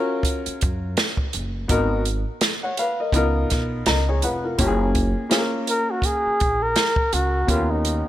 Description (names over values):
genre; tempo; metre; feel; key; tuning
hip hop, jazz-hop; 83 BPM; 4/4; swing 58% on 16ths; F# major; A4 = 435 Hz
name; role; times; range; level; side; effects
dark grand piano; accompaniment; 0.0-8.1 s; A#3 to A#5; -24 LUFS; left 2 dB; none
open jazz drum kit; drums; 0.2-8.0 s; hi-hat, kick drum, snare drum; -23 LUFS; right 1 dB; none
upright bass; bass; 0.5-8.0 s; E#1 to F#2; -24 LUFS; equal; none
breathy flugelhorn; melody; 5.7-8.1 s; D#4 to A#4; -21 LUFS; equal; tape echo
room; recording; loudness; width
light reverb, small room reverb; none; -19 LUFS; side -13 dB against mid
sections
0.0-4.6 A section; 4.6-8.1 B section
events
grand piano fill 3.5-4.6; flugelhorn solo 4.6-8.1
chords
0.0 D#m9 (rootless); 1.7 G#m7; 3.1 C#13; 4.6 F#maj7; 7.5 D#7b13